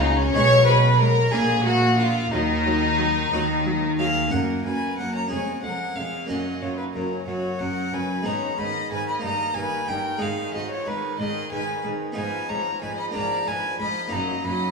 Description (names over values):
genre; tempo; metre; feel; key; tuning
classical, baroque-style concerto movement with solo episodes; 61 BPM (dotted quarters); 6/8; straight; Eb minor, F# major from 4.3 s; A4 = 437 Hz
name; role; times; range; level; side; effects
rich chamber violin section; melody; 0.0-14.7 s; B3 to Db6; -32 LUFS; left 1 dB; none
rich violin; melody; 0.0-14.7 s; Db4 to B5; -26 LUFS; left 1 dB; none
rich chamber violin section; second line; 0.0-14.7 s; Db4 to D#5; -28 LUFS; left 3 dB; none
harpsichord; accompaniment; 0.0-14.7 s; E#2 to A#4; -30 LUFS; right 1 dB; none
rich chamber viola section; accompaniment; 0.0-14.7 s; D#3 to Bb3; -33 LUFS; right 2 dB; none
rich chamber double bass section; bass; 0.0-14.5 s; E#1 to Eb2; -27 LUFS; right 1 dB; none
rich studio cello section; bass; 0.0-14.5 s; E#2 to Eb3; -30 LUFS; right 1 dB; none
room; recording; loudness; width
wet recital hall reverb, RT60 1.8 s; small room ambience; -21 LUFS; side -4 dB against mid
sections
0.0-4.3 A section; 4.3-14.7 B section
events
none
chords
0.3 Abm/Cb; 1.3 Bb; 2.3 Ebm; 4.3 F#; 5.3 C#/E#; 6.3 F#; 8.3 G#m; 9.2 D#/G; 10.2 G#5; 12.2 Fm7b5/Ab; 13.1 Bb7/Ab; 14.1 Ebm/Gb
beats
| 0.34 1.33 | 2.32 3.32 | 4.32 5.31 | 6.30 7.28 | 8.27 9.24 | 10.22 11.20 | 12.17 13.15 | 14.12